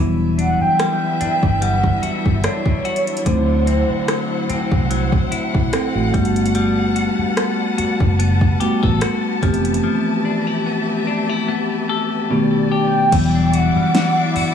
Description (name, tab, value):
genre	contemporary R&B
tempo	73 BPM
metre	4/4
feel	swing 54% on 16ths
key	E minor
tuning	A4 = 439 Hz
part	mellow tine electric piano	accompaniment	0.0-14.5 s	D#3 to A4	-20 LUFS	right 1 dB	wide subtle chorus
part	warm studio string section	sustained chords	0.0-14.5 s	G3 to D6	-26 LUFS	left 3 dB	none
part	semi-hollow electric guitar	arpeggios	0.0-14.5 s	B2 to A4	-23 LUFS	left 8 dB	digital delay
part	vintage muted fingered electric bass	bass	0.0-14.4 s	E1 to D2	-20 LUFS	equal	none
part	mellow horn-like synth lead	melody	0.4-4.5, 12.7-14.5 s	C5 to G5	-20 LUFS	right 2 dB	chorus, digital delay
part	smooth R&B drum kit	drums	0.4-14.5 s	crash cymbal, hi-hat, kick drum, rim click, snare drum	-21 LUFS	equal	overdrive
room	light reverb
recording	small room ambience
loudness	-15 LUFS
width	side -8 dB against mid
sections	0.0-13.1 A section; 13.1-14.5 B section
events	none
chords	0.0 Em9; 3.3 D9; 6.1 Gmaj9; 9.4 Fmaj9#11; 12.3 B7alt; 13.1 Em9